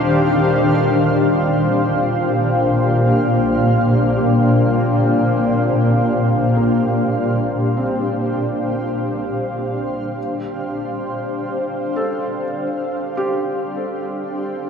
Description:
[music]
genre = ambient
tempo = 50 BPM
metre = 4/4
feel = straight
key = Bb major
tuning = A4 = 440 Hz
[part]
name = granular cloud pad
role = sustained chords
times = 0.0-14.7 s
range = Bb2 to F5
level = -16 LUFS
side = equal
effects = built-in reverb
[part]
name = felt-muted upright piano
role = arpeggios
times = 0.0-14.7 s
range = Bb3 to Bb4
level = -30 LUFS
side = equal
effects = none
[part]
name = organ-like drone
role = drone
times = 0.0-0.7 s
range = Bb2 to C5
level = -27 LUFS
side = equal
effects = ensemble chorus, built-in reverb
[sound]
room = wet cathedral reverb, RT60 5.8 s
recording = in a vast, echoing space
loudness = -16 LUFS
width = side -6 dB against mid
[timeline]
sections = 0.6-14.7 A section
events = none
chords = 0.0 Ebmaj9; 0.6 Bbadd9; 10.2 Dm7

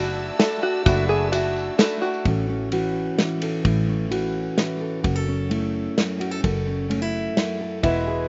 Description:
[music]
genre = indie folk with a building arrangement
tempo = 129 BPM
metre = 3/4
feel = straight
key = A major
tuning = A4 = 442 Hz
[part]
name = picked swing-style acoustic guitar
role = accompaniment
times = 0.0-2.3, 7.8-8.3 s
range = F#2 to F#4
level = -29 LUFS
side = equal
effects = slapback echo
[part]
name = warm symphonic string section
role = sustained chords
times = 0.0-2.2 s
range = F#4 to E6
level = -37 LUFS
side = equal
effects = none
[part]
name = open-back banjo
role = arpeggios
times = 0.0-2.2, 7.8-8.3 s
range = E4 to A4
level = -26 LUFS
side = equal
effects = slapback echo
[part]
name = fingered electric bass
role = bass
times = 0.0-8.3 s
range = E1 to A1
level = -29 LUFS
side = equal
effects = none
[part]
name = natural country drum kit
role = drums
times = 0.4-7.9 s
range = kick drum, ride cymbal, snare drum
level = -26 LUFS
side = equal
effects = none
[part]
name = tambourine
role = percussion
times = 0.4-2.2 s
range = none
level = -41 LUFS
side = equal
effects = none
[part]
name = fingerpicked steel-string acoustic guitar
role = accompaniment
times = 2.3-8.3 s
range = F#2 to B4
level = -27 LUFS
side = equal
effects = none
[sound]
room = little or no reverb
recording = recorded outdoors, with no room sound, nothing above 7.7 kHz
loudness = -23 LUFS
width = mono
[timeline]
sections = 0.0-2.3 A section; 2.3-8.3 B section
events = none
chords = 0.0 Dadd9/F#; 2.3 A6; 5.0 F#m7

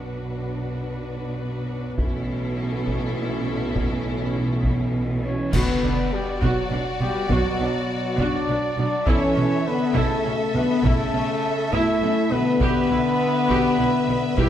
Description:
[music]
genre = cinematic, epic orchestral film score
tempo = 68 BPM (dotted quarters)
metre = 6/8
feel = straight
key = B minor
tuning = A4 = 440 Hz
[part]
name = rich symphonic violin section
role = melody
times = 0.0-14.5 s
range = A4 to E5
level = -33 LUFS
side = left 4 dB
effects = none
[part]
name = rich symphonic violin section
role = second line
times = 0.0-14.5 s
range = E4 to B4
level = -34 LUFS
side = left 2 dB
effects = none
[part]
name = clear symphonic viola section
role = accompaniment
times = 0.0-14.5 s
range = A3 to G4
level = -32 LUFS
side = right 2 dB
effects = none
[part]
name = mellow French horn section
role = sustained chords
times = 0.0-14.5 s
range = F#3 to E4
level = -25 LUFS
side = left 3 dB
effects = none
[part]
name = warm trombone section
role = sustained chords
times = 0.0-14.5 s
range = F#2 to A3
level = -30 LUFS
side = right 3 dB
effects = none
[part]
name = bright symphonic double bass section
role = bass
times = 0.0-14.4 s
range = B1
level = -29 LUFS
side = right 2 dB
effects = none
[part]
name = rich symphonic cello section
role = bass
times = 0.0-14.4 s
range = B2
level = -29 LUFS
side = right 2 dB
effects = none
[part]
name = taiko ensemble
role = drums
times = 2.0-14.5 s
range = none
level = -26 LUFS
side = equal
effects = none
[part]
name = cymbal swell, clash cymbals and concert bass drum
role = percussion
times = 2.0-6.7 s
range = none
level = -31 LUFS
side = equal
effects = none
[part]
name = mellow trumpet section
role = stabs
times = 5.2-14.5 s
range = F#4 to E5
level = -28 LUFS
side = right 1 dB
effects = none
[sound]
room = moderate scoring stage reverb, RT60 1.6 s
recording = none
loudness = -20 LUFS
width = side -10 dB against mid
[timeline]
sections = 0.0-5.5 A section; 5.5-14.5 B section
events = band accent 5.5-6.1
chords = 0.0 Bm; 2.0 A/B; 5.5 Bm; 9.1 A/B; 12.6 Em/B

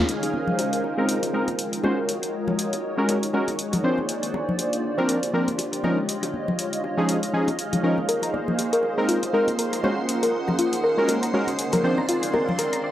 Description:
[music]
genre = deep house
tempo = 120 BPM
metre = 4/4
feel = swing 57% on 16ths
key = unclear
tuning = A4 = 440 Hz
[part]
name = hollow soft pad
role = sustained chords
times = 0.0-12.9 s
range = Ab3 to Gb5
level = -28 LUFS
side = equal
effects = ensemble chorus
[part]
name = granular cloud pad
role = texture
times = 0.0-12.9 s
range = Db4 to G5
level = -30 LUFS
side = right 1 dB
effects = built-in reverb
[part]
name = string machine, violins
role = texture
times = 0.0-0.1, 8.1-12.9 s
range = C5 to C6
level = -35 LUFS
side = equal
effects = ensemble chorus
[part]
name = electronic hi-hat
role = drums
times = 0.1-12.8 s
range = none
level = -29 LUFS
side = left 1 dB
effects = none
[part]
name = bongos and congas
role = percussion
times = 0.2-12.7 s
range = none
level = -30 LUFS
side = left 2 dB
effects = none
[part]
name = warm analog keys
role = stabs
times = 1.0-12.0 s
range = F3 to C5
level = -25 LUFS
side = equal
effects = chorus, low-pass filter, tape echo
[part]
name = soft round pluck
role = arpeggios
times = 8.1-12.9 s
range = F4 to Bb5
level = -25 LUFS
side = left 1 dB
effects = chorus, tape echo
[sound]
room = moderate plate reverb, RT60 1.2 s, digital ambience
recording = dry, gritty hardware recording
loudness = -21 LUFS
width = side -12 dB against mid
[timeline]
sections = 0.1-12.9 A section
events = band accent 0.0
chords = 0.1 Bb9sus4; 1.8 Ab9sus4; 3.8 C9sus4; 5.8 Eb9sus4; 8.1 Bb9sus4; 9.8 Ab9sus4; 11.8 C9sus4

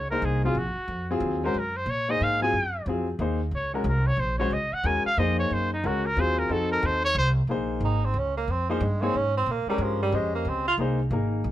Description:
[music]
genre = modal jazz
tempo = 182 BPM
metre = 3/4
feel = swing 62% on 8ths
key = Eb dorian, Bb dorian from 7.5 s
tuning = A4 = 439 Hz
[part]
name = clear trumpet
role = melody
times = 0.0-7.3 s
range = Eb4 to Ab5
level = -27 LUFS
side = equal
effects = none
[part]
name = upright bass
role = bass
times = 0.0-11.5 s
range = Ab1 to Bb2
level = -28 LUFS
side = equal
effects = none
[part]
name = clear grand piano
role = accompaniment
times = 0.1-11.5 s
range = Gb3 to Eb5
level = -28 LUFS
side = left 2 dB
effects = none
[part]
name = warm tenor saxophone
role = second line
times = 7.8-10.7 s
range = F3 to F4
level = -27 LUFS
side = right 3 dB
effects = none
[sound]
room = light reverb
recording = close, detailed microphones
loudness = -23 LUFS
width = side -13 dB against mid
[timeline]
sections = 0.0-7.5 A section; 7.5-11.5 A section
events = trumpet solo 0.0-7.5; tenor saxophone solo 7.5-11.5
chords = 0.0 Ebm9; 6.5 F7b9; 7.5 Bbm9

